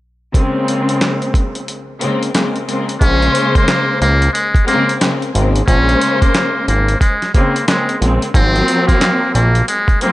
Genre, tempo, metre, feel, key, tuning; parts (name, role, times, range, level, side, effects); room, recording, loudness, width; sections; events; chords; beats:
hip hop, boom-bap hip-hop; 90 BPM; 4/4; swing 62% on 16ths; Bb minor; A4 = 440 Hz
warm studio string section; accompaniment; 0.3-10.1 s; Db3 to C5; -17 LUFS; left 1 dB; high-pass filter, low-pass filter
dusty soul sampler-style drum kit; drums; 0.3-10.1 s; handclaps, hi-hat, kick drum, snare drum; -16 LUFS; equal
trumpet with metal mute; melody; 3.0-10.1 s; Ab3 to Db4; -16 LUFS; equal; high-pass filter, low-pass filter, slapback echo
fat analog bass; bass; 3.0-9.6 s; Ab1 to Db2; -14 LUFS; equal
small room reverb; nothing above 10.6 kHz, faint mains hum; -12 LUFS; side -16 dB against mid
0.3-3.0 A section; 3.0-10.1 B section
break 1.7-3.0
0.3 Bbm9; 8.3 Ab13
| 0.34 1.01 1.68 2.34 | 3.01 3.68 4.34 5.01 | 5.68 6.34 7.01 7.68 | 8.34 9.01 9.68